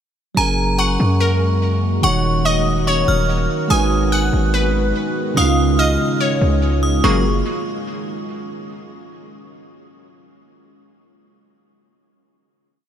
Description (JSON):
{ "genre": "hip hop", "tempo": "144 BPM", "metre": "4/4", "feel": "half-time", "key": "F# major", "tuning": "A4 = 441 Hz", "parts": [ { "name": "bell-like tine electric piano", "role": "accompaniment", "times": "0.3-7.2 s", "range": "C#3 to C#5", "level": "-22 LUFS", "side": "right 4 dB", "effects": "none" }, { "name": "metallic FM bell", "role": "second line", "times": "0.4-7.2 s", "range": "A#5 to F#6", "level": "-23 LUFS", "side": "right 2 dB", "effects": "chorus, tape echo" }, { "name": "deep dark ambient pad", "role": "sustained chords", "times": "1.2-7.2 s", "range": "C#3 to F#4", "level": "-25 LUFS", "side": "equal", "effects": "chorus, built-in reverb" }, { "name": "glassy wavetable pluck", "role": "arpeggios", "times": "0.4-7.2 s", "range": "A#3 to G#5", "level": "-23 LUFS", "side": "left 3 dB", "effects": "chorus, tape echo" }, { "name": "distorted 808-style bass", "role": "bass", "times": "0.4-7.4 s", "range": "D#1 to F#2", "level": "-18 LUFS", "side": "left 1 dB", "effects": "distortion" } ], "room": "light reverb, digital ambience", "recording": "none", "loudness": "-15 LUFS", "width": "side -9 dB against mid", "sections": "0.4-7.0 hook; 7.0-8.7 final chord", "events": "none", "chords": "0.4 F#add9; 2.0 D#m7; 3.7 G#m7; 5.4 C#add9; 7.0 F#add9" }